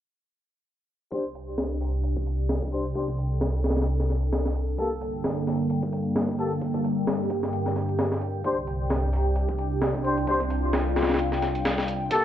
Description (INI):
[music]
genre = breakbeat, breaks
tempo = 131 BPM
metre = 4/4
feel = swing 56% on 16ths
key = unclear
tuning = A4 = 441 Hz
[part]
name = phased analog pad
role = sustained chords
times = 1.1-12.2 s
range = C2 to G5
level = -25 LUFS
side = equal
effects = phaser, chorus, sidechain pumping
[part]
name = mellow brass ensemble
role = stabs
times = 1.1-12.2 s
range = Bb3 to C5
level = -28 LUFS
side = left 2 dB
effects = low-pass filter, analog delay
[part]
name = breakbeat sampler-style drum kit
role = drums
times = 1.1-12.2 s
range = hi-hat, kick drum, snare drum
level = -30 LUFS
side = equal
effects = high-pass filter on hats, studio reverb, high-pass filter on kick, high-pass filter on snare
[sound]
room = light reverb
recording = dry, gritty hardware recording, low-pass filter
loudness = -24 LUFS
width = side -11 dB against mid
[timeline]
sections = 1.1-12.2 A section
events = filter sweep on analog synth pad 1.1-12.2; filter sweep 1.1-12.2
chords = 1.1 Csus2; 4.8 Gmadd9; 8.4 Csus2